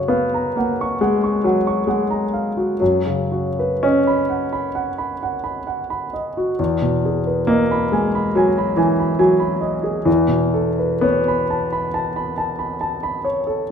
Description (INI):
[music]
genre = classical, impressionist solo piano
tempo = 56-72 BPM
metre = 4/4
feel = rubato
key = unclear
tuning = A4 = 440 Hz
[part]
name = warm concert grand piano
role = solo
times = 0.0-13.7 s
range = E2 to C#6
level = -17 LUFS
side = equal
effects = none
[sound]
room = wet recital hall reverb, RT60 1.4 s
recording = minimal, uncompressed stereo recording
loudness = -17 LUFS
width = side -7 dB against mid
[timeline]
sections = 0.0-13.7 A section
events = none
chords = 0.0 F#maj7; 2.8 Badd9/F#; 6.6 Emaj7; 10.1 Aadd9/E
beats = 0.09 1.01 1.87 | 2.81 3.83 4.75 5.67 | 6.59 7.49 8.36 9.20 | 10.07 11.05 11.96 12.83 | 13.71